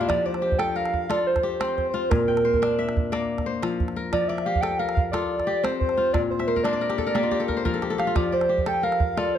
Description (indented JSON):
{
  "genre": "west african traditional, West African string and xylophone music",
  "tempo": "119 BPM (dotted quarters)",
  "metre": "12/8",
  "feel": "straight",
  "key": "F major",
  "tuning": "A4 = 441 Hz",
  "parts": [
    { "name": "pure sine lead", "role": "melody", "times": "0.0-9.4 s", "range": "Bb4 to G5", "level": "-24 LUFS", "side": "right 2 dB", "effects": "chorus" },
    { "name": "kora", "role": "arpeggios", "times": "0.0-9.4 s", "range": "Bb2 to G5", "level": "-26 LUFS", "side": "left 4 dB", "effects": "none" },
    { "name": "calabash", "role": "percussion", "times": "0.1-9.3 s", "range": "none", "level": "-29 LUFS", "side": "right 2 dB", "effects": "none" }
  ],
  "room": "moderate recital hall reverb, RT60 1.3 s",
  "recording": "dark, warm production",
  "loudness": "-21 LUFS",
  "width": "side -9 dB against mid",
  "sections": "0.1-9.4 A section",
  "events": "kora fill 6.4-8.2; drum fill 7.3-8.2",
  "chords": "0.1 F; 2.1 Bb; 4.1 F; 6.1 Bb; 8.2 F"
}